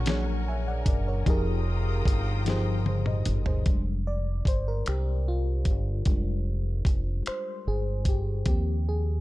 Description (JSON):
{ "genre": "slow six-eight R&B", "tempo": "50 BPM (dotted quarters)", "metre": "6/8", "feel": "straight", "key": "F dorian", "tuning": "A4 = 440 Hz", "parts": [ { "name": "FM electric piano with auto-pan", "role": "accompaniment", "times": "0.0-9.2 s", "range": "Bb2 to Ab5", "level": "-33 LUFS", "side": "left 2 dB", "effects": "none" }, { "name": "warm studio string section", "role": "sustained chords", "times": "0.0-3.6 s", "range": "Bb4 to Eb6", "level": "-40 LUFS", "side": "left 5 dB", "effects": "none" }, { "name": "dark horn section", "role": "stabs", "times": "0.0-3.2 s", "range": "C3 to F#4", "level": "-41 LUFS", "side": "right 2 dB", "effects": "ping-pong delay" }, { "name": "deep dub fingered electric bass", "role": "bass", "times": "0.0-9.2 s", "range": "F1 to Eb2", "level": "-27 LUFS", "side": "equal", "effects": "none" }, { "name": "dusty soul sampler-style drum kit", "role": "drums", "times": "0.1-8.6 s", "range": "finger snaps, hi-hat, kick drum, snare drum, toms", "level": "-26 LUFS", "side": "equal", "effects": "none" } ], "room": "little or no reverb", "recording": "dark, warm production", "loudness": "-25 LUFS", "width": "side -18 dB against mid", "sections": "0.0-3.7 A section; 3.7-9.2 B section", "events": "drum fill 2.5-3.7; FM electric piano solo 3.7-9.2", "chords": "0.0 Bb7alt; 1.3 Fm11; 3.7 Fm69; 8.5 Eb5" }